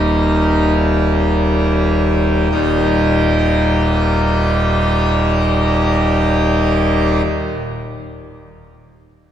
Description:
classical, chorale-style piece for pipe organ; free time; Eb major; A4 = 437 Hz
pipe organ, full organ; solo; 0.0-7.2 s; Eb1 to G4; -13 LUFS; equal
wet church reverb, RT60 3.2 s; heard from further back in the room; -13 LUFS; side -10 dB against mid
0.0-2.5 A section; 2.5-9.3 B section
slowing down 0.0-2.5
0.0 Eb

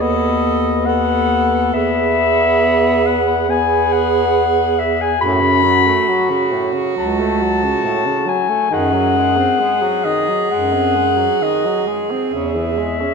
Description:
classical, lyrical piece for single-reed quartet; 68 BPM; 4/4; rubato; A4 = 440 Hz
mellow clarinet; melody; 0.0-13.1 s; D#5 to B5; -17 LUFS; left 6 dB
clear alto saxophone; second line; 0.0-13.1 s; F#4 to A4; -20 LUFS; right 7 dB
mellow tenor saxophone; accompaniment; 0.0-13.1 s; A2 to C#4; -21 LUFS; left 1 dB
warm bass clarinet; bass; 0.0-13.1 s; C#2 to F#2; -21 LUFS; right 4 dB
wet concert hall reverb, RT60 2.5 s; -14 LUFS; side -5 dB against mid
0.0-13.1 A section
0.0 B7/D#; 1.7 E; 5.2 F#m; 8.7 G#7/F#; 12.3 C#m/E

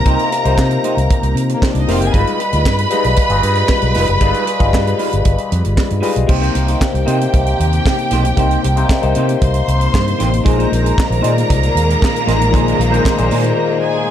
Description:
disco; 115 BPM; 4/4; straight; C minor; A4 = 441 Hz
warm symphonic violin section; second line; 0.0-14.1 s; Bb3 to C6; -20 LUFS; right 1 dB
barky tine electric piano; accompaniment; 0.0-14.1 s; Bb2 to Eb5; -19 LUFS; left 7 dB; overdrive, phaser
fingered electric bass; bass; 0.0-13.5 s; F1 to C3; -16 LUFS; equal
clean electric guitar; accompaniment; 0.1-14.0 s; Ab3 to C5; -23 LUFS; right 4 dB; wide subtle chorus
tight funk drum kit; drums; 0.1-13.6 s; crash cymbal, handclaps, hi-hat, kick drum, snare drum; -18 LUFS; right 1 dB
clear studio string section; sustained chords; 10.5-14.1 s; Eb3 to Bb3; -22 LUFS; right 1 dB
light reverb; dark, warm production; -12 LUFS; side -10 dB against mid
0.0-6.3 A section; 6.3-14.1 B section
break 13.6-14.1
0.0 Cm7; 2.1 G7b9b13; 6.3 Cm7; 10.5 Bb9sus4

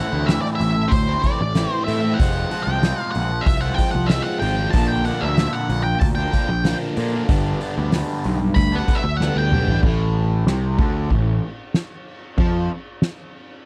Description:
psychedelic rock; 94 BPM; 4/4; straight; A4 = 440 Hz
octave-fuzz lead guitar; melody; 0.0-9.8 s; C5 to B5; -27 LUFS; equal; distortion, slapback echo
overdriven semi-hollow guitar; riff; 0.0-12.7 s; G2 to F4; -26 LUFS; equal; phaser
fuzz picked electric bass; bass; 0.1-12.7 s; F1 to Bb2; -25 LUFS; equal; overdrive
soft-mallet drum kit; drums; 0.3-13.5 s; crash cymbal, hi-hat, kick drum, ride cymbal, snare drum, toms; -24 LUFS; equal
little or no reverb; dry, close 1970s-style studio recording; -20 LUFS; mono
0.0-9.8 A section; 9.8-13.7 B section
lead electric guitar solo 0.0-9.8; drum fill 9.2-9.8
0.0 Am; 2.2 Fm; 4.7 Bb; 7.3 G; 9.8 Am

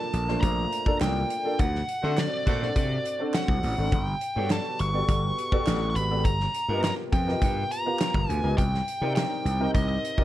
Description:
polished 1980s jazz-funk pop; 103 BPM; 4/4; straight; G minor; A4 = 444 Hz
nasal lead guitar with a parked wah; melody; 0.0-10.2 s; D5 to C#6; -29 LUFS; equal; overdrive
warm concert grand piano; accompaniment; 0.0-10.2 s; A3 to F5; -31 LUFS; equal; ensemble chorus
gritty slap bass; bass; 0.1-10.0 s; G1 to D3; -27 LUFS; equal; overdrive
modern studio drum kit; drums; 0.1-10.2 s; hi-hat, kick drum, snare drum; -28 LUFS; equal
group handclap; percussion; 1.0-9.3 s; -41 LUFS; right 7 dB
clear horn section; second line; 2.0-2.7 s; A3 to C5; -33 LUFS; right 1 dB
small room ambience; -23 LUFS; side -14 dB against mid
0.0-10.2 A section
band accent 1.6-3.9
0.0 Bbmaj7; 1.6 D7; 3.9 Gmaj9; 6.2 G7alt; 8.6 Cm9

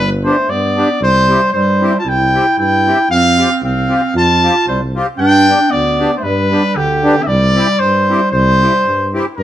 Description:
alpine folk, alpine dance band; 115 BPM; 2/4; swing 55% on 8ths; C major; A4 = 440 Hz
warm trumpet; melody; 0.0-9.4 s; G4 to A5; -13 LUFS; left 1 dB
warm clarinet; second line; 0.0-9.4 s; D3 to F4; -17 LUFS; right 4 dB
mellow tuba; bass; 0.0-9.4 s; G1 to G2; -18 LUFS; equal
accordion; accompaniment; 0.2-9.3 s; B3 to G4; -18 LUFS; left 1 dB; light tremolo tuning
moderate stone room reverb, RT60 0.9 s; band playing live in one room; -10 LUFS; side -12 dB against mid
0.0-9.4 A section
0.0 G; 1.0 C; 3.1 Fsus2; 5.2 G; 7.3 C

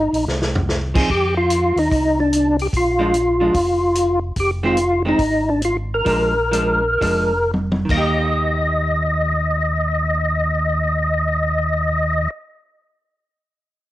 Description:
soul jazz organ trio; 103-147 BPM; 4/4; swing 65% on 8ths; Eb major; A4 = 441 Hz
percussive tonewheel organ; melody; 0.0-12.3 s; D4 to Eb5; -18 LUFS; equal; slow rotary speaker, overdrive, chorus vibrato, cassette tape, plate reverb
mellow tonewheel organ; bass; 0.0-12.3 s; F1 to F2; -23 LUFS; equal; slow rotary speaker
vintage drum kit; drums; 0.1-8.0 s; crash cymbal, hi-hat, kick drum, snare drum, toms; -23 LUFS; equal; cassette tape
vintage hollow-body jazz guitar; accompaniment; 0.9-12.4 s; Eb3 to Ab4; -24 LUFS; right 2 dB; cassette tape
light reverb; home recording on cassette; -16 LUFS; side -15 dB against mid
0.0-1.1 A section; 1.1-8.1 B section; 8.1-12.8 C section
drum fill 0.3-0.7, 7.5-8.1; slowing down 4.4-8.1
0.3 Cmadd11; 1.1 F5; 2.7 Bb7; 4.4 Fm7; 6.1 Bb7; 7.8 Eb

